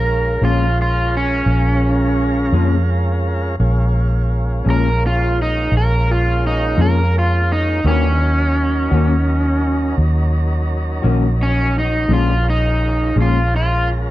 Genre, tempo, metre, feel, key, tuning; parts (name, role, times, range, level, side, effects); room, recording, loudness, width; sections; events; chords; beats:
blues; 56 BPM (dotted quarters); 12/8; straight; Bb minor; A4 = 440 Hz
crunchy overdriven guitar; melody; 0.0-13.9 s; Db4 to Bb4; -19 LUFS; right 1 dB
tonewheel organ; sustained chords; 0.0-14.1 s; D3 to Cb5; -26 LUFS; right 1 dB; slow rotary speaker
vintage muted fingered electric bass; bass; 0.0-14.1 s; Bb1 to F2; -16 LUFS; equal
mellow electric guitar; accompaniment; 0.4-13.4 s; Bb2 to Gb4; -21 LUFS; left 6 dB; harmonic tremolo, plate reverb
light reverb; dark, warm production; -14 LUFS; side -15 dB against mid
0.0-14.1 A section
overdriven electric guitar solo 0.0-14.1
0.0 Bbm7; 7.8 Ebm7; 12.1 Bbm7
0.42 1.48 2.54 | 3.60 4.66 5.72 6.78 | 7.84 8.90 9.97 11.03 | 12.10 13.16